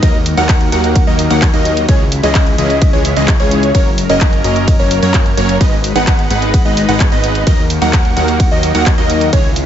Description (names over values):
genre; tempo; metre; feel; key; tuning
EDM, festival progressive house; 129 BPM; 4/4; straight; unclear; A4 = 441 Hz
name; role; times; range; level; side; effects
lush unison pad; sustained chords; 0.0-9.7 s; C#3 to B4; -20 LUFS; left 1 dB; chorus, sidechain pumping
plucky unison lead; arpeggios; 0.0-9.5 s; C#5 to F#5; -19 LUFS; equal; cassette tape, sidechain pumping, ping-pong delay
supersaw stab; riff; 0.0-9.5 s; E3 to F#5; -17 LUFS; right 1 dB; sidechain pumping, ping-pong delay
fat analog bass; bass; 0.0-9.7 s; F#1 to F#2; -18 LUFS; equal; tube saturation, sidechain pumping
electronic kick drum; drums; 0.0-9.4 s; none; -12 LUFS; equal; overdrive
pop drum kit; drums; 0.0-9.7 s; handclaps, hi-hat, ride cymbal; -21 LUFS; right 1 dB; none
room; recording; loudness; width
light reverb; nothing above 7.7 kHz; -10 LUFS; side -10 dB against mid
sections
0.0-9.7 A section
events
none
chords
0.0 D#m; 1.9 C#m; 3.7 F#; 5.6 G#m; 7.5 D#m